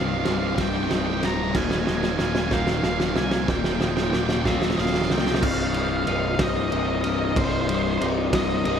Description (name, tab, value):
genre	post-rock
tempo	62 BPM (dotted quarters)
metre	6/8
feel	straight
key	C minor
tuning	A4 = 439 Hz
part	octave-fuzz lead guitar	melody	0.0-8.8 s	C5 to Bb5	-29 LUFS	right 2 dB	distortion, analog delay
part	deep dark ambient pad	sustained chords	0.0-8.8 s	C3 to Eb5	-36 LUFS	right 1 dB	none
part	glockenspiel with soft plastic mallets	arpeggios	0.0-8.8 s	D6 to G6	-37 LUFS	right 7 dB	analog delay
part	twangy electric guitar	arpeggios	0.0-8.8 s	C2 to Eb4	-33 LUFS	left 2 dB	none
part	crunchy overdriven guitar	riff	0.0-8.8 s	C2 to C3	-28 LUFS	left 12 dB	none
part	tight distorted guitar	riff	0.0-5.4 s	C2 to Bb2	-32 LUFS	right 13 dB	distortion
part	fuzz picked electric bass	bass	0.0-8.8 s	C1 to C2	-28 LUFS	right 2 dB	overdrive
part	loose indie drum kit	drums	0.3-8.8 s	crash cymbal, kick drum, ride cymbal, snare drum	-26 LUFS	right 2 dB	none
room	light reverb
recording	none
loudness	-21 LUFS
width	side -8 dB against mid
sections	0.0-5.4 A section; 5.4-8.8 B section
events	build-up 0.0-5.4; drum fill 0.0-5.4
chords	0.0 Cm; 1.6 Ebsus2; 5.4 Cm7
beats	0.58 | 1.55 2.52 | 3.49 4.46 | 5.43 6.39 | 7.36 8.33